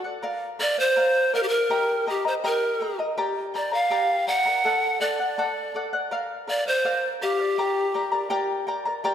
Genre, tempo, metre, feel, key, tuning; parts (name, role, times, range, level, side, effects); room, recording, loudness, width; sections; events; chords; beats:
andean folk, Andean ensemble; 82 BPM; 2/4; straight; G minor; A4 = 440 Hz
charango; accompaniment; 0.0-9.1 s; G4 to Bb5; -27 LUFS; left 1 dB
breathy bright pan flute; melody; 0.6-8.3 s; G4 to F#5; -23 LUFS; equal
moderate scoring stage reverb, RT60 1.6 s; -22 LUFS; side -9 dB against mid
0.0-9.0 A section
0.2 Bb; 1.7 Eb; 3.2 Gm; 4.6 D; 6.1 Bb; 7.6 Gm
| 0.24 0.97 | 1.71 2.44 | 3.18 3.91 | 4.65 5.38 | 6.11 6.84 | 7.57 8.30 | 9.03